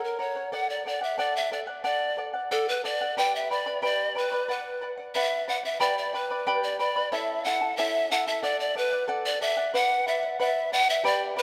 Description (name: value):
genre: andean folk, Andean ensemble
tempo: 91 BPM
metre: 2/4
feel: straight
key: B minor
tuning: A4 = 440 Hz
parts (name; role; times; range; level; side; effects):
- breathy polished pan flute; melody; 0.0-11.4 s; A4 to G5; -29 LUFS; equal; none
- charango; accompaniment; 0.0-11.4 s; E4 to B5; -32 LUFS; equal; none
room: wet concert hall reverb, RT60 2.4 s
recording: none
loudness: -27 LUFS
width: mono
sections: 0.0-5.8 A section; 5.8-11.4 B section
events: none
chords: 0.0 F#; 0.5 D; 3.2 G; 4.5 Bm; 5.8 G; 7.1 A; 8.4 D; 9.7 Bm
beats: | 0.52 1.19 | 1.85 2.51 | 3.17 3.83 | 4.49 5.15 | 5.81 6.47 | 7.12 7.78 | 8.43 9.09 | 9.74 10.39 | 11.04